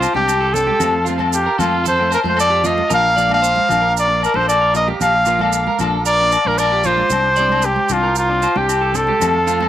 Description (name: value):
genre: highlife guitar band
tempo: 114 BPM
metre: 4/4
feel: straight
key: Bb major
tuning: A4 = 441 Hz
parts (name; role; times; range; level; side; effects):
- clear trumpet; melody; 0.0-9.7 s; F4 to F5; -16 LUFS; equal; cassette tape
- clean electric guitar; accompaniment; 0.0-9.7 s; F3 to D4; -27 LUFS; left 9 dB; cassette tape
- combo organ; sustained chords; 0.0-9.7 s; F5 to D6; -30 LUFS; equal; cassette tape
- electric guitar at the edge of break-up; arpeggios; 0.0-9.7 s; F4 to D5; -24 LUFS; right 8 dB; phaser, cassette tape, analog delay
- fingered electric bass; bass; 0.0-9.7 s; Bb1 to F2; -23 LUFS; equal; none
- agogo bells; percussion; 0.0-9.7 s; none; -23 LUFS; left 12 dB; none
- maracas; percussion; 0.0-9.6 s; none; -27 LUFS; right 13 dB; none
- congas; percussion; 0.1-9.7 s; none; -30 LUFS; right 10 dB; none
room: light reverb, studio ambience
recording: home recording on cassette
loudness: -13 LUFS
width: side -12 dB against mid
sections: 0.0-9.7 A section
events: none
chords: 0.0 Csus2; 0.8 F; 2.9 Bb; 7.1 Csus2